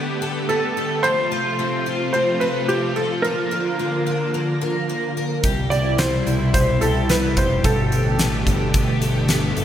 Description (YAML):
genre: dream pop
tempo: 109 BPM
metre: 4/4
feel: straight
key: C major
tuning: A4 = 441 Hz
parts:
  - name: felt-muted upright piano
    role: melody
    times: 0.0-9.3 s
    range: G4 to D5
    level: -23 LUFS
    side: right 1 dB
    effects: tape echo
  - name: string machine, violas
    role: sustained chords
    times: 0.0-9.6 s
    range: B2 to G4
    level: -23 LUFS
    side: equal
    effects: ensemble chorus
  - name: picked twelve-string acoustic guitar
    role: arpeggios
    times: 0.0-9.6 s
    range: F3 to Bb4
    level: -27 LUFS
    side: left 1 dB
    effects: wide subtle chorus, tape echo
  - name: fat analog bass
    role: bass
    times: 5.4-9.6 s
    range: F1 to C2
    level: -24 LUFS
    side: equal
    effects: none
  - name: huge arena drum kit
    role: drums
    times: 5.4-9.6 s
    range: hi-hat, kick drum, snare drum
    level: -22 LUFS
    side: equal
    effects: none
room: wet concert hall reverb, RT60 2.1 s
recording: none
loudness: -18 LUFS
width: side -10 dB against mid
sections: 0.0-9.6 A section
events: none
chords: 0.0 Gadd9; 1.0 F; 3.2 Bb; 5.4 Cmaj7; 7.6 Gadd9